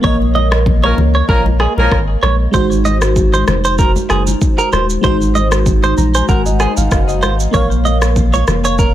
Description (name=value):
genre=afrobeats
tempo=96 BPM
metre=4/4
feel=swing 55% on 16ths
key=unclear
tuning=A4 = 441 Hz
part: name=FM electric piano with soft pad layer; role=accompaniment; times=0.0-8.9 s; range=Ab3 to Bb5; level=-18 LUFS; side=equal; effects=chorus
part: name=direct-recorded clean electric guitar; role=riff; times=0.0-8.9 s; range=Ab4 to Eb5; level=-18 LUFS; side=right 3 dB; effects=lush chorus, ping-pong delay
part: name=punchy sub bass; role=bass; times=0.0-8.9 s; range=Eb1 to Db2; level=-15 LUFS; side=equal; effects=none
part: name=deep house drum kit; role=drums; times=0.0-8.9 s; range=kick drum, rim click, shaker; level=-17 LUFS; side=equal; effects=none
part: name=congas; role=percussion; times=0.0-8.6 s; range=none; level=-24 LUFS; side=left 2 dB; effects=none
part: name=mellow horn section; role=second line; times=0.8-2.0 s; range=F3 to Bb4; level=-18 LUFS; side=equal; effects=none
room=digital ambience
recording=none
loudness=-11 LUFS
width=side -12 dB against mid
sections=0.0-8.9 A section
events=break 0.0-2.5; band accent 0.0-2.5; FM electric piano fill 5.7-7.5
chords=0.0 Bbm; 2.5 Ab7; 7.5 Bbm